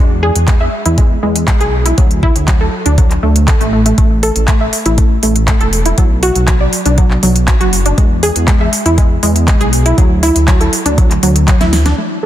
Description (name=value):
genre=progressive house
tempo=120 BPM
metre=4/4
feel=straight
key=unclear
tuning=A4 = 440 Hz
part: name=wide unison pluck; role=arpeggios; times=0.0-12.3 s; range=F#3 to E5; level=-15 LUFS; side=equal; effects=sidechain pumping, tape echo
part: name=dark detuned saw bass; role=bass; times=0.0-11.9 s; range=E1 to E2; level=-14 LUFS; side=equal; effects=sidechain pumping
part: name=pop drum kit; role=drums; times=0.4-12.1 s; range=handclaps, hi-hat, snare drum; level=-19 LUFS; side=equal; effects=sidechain pumping on hats, low-pass filter on hats, low-pass filter on snare
part: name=electronic kick drum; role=drums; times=0.5-11.6 s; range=none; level=-11 LUFS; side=equal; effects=none
room=light reverb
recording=dense, heavily limited modern master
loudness=-9 LUFS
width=side -12 dB against mid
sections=0.0-12.0 A section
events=drum fill 11.6-12.0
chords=0.0 E; 2.0 D; 4.0 A5; 6.0 Bm; 8.0 E; 10.0 D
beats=0.48 0.98 1.48 | 1.98 2.48 2.98 3.48 | 3.98 4.48 4.98 5.48 | 5.98 6.48 6.98 7.48 | 7.98 8.48 8.98 9.48 | 9.98 10.48 10.98 11.48 | 11.98